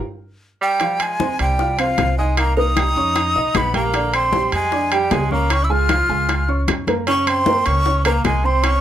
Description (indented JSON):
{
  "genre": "Afro-Cuban jazz",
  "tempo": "153 BPM",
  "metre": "4/4",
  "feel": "straight",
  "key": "F minor",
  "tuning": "A4 = 440 Hz",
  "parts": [
    { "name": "breathy jazz flute", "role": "melody", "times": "0.6-8.8 s", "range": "F5 to F6", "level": "-20 LUFS", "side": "equal", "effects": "none" },
    { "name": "clear tenor saxophone", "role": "second line", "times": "0.6-8.8 s", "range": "F3 to F4", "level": "-25 LUFS", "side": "right 4 dB", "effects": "slapback echo" },
    { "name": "dark upright piano", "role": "accompaniment", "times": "0.8-8.8 s", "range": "Db3 to F6", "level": "-24 LUFS", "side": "right 2 dB", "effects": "none" },
    { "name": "bongos", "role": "percussion", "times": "0.8-8.8 s", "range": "none", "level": "-27 LUFS", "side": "left 7 dB", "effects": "none" },
    { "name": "congas", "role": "percussion", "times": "0.8-8.8 s", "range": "none", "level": "-27 LUFS", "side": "left 4 dB", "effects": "none" },
    { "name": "timbales", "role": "percussion", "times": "0.8-8.8 s", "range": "none", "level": "-25 LUFS", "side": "right 4 dB", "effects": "none" },
    { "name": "claves", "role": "percussion", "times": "1.0-8.8 s", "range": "none", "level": "-29 LUFS", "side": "left 7 dB", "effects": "none" },
    { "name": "upright bass", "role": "bass", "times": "1.4-8.8 s", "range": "Bb1 to Gb2", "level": "-21 LUFS", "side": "equal", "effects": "none" }
  ],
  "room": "light reverb",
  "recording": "none",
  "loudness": "-16 LUFS",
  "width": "side -11 dB against mid",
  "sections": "0.8-8.8 A section",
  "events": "drum fill 0.0-0.8; band accent 0.0-0.8",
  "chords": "0.0 N.C.; 0.8 Fm9; 2.4 Cm7; 3.2 Eb7b13; 3.9 Bb69; 5.5 Db; 7.1 Gb",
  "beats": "0.02 0.41 | 0.81 1.20 1.59 1.98 | 2.38 2.77 3.16 3.55 | 3.94 4.33 4.72 5.12 | 5.51 5.90 6.29 6.68 | 7.07 7.46 7.86 8.25 | 8.64"
}